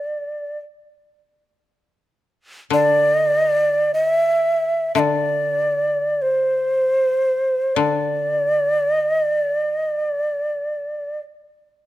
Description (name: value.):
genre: japanese traditional, Japanese chamber music.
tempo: free time.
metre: none.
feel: none.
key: unclear.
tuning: A4 = 441 Hz.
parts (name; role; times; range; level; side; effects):
breathy shakuhachi; melody; 0.0-11.2 s; C5 to E5; -18 LUFS; right 1 dB; none.
koto; accompaniment; 0.0-11.1 s; D3; -24 LUFS; left 8 dB; none.
room: light reverb.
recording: close, detailed microphones.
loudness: -17 LUFS.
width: side -15 dB against mid.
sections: 0.0-11.9 A section.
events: none.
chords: none.